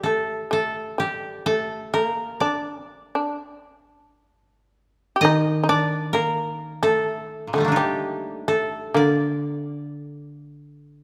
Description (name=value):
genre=japanese traditional, Japanese chamber music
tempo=64 BPM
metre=4/4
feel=rubato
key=D miyako bushi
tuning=A4 = 438 Hz
part: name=koto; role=melody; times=0.0-11.0 s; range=Bb2 to Eb5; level=-28 LUFS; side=equal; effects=none
part: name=koto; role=accompaniment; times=0.0-11.0 s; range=D3 to Eb3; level=-26 LUFS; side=equal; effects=none
part: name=shamisen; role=second line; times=0.1-11.0 s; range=G3 to G4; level=-26 LUFS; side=equal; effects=none
room=moderate recital hall reverb, RT60 1.7 s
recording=faint mains hum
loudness=-23 LUFS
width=mono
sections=0.0-11.0 A section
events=none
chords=none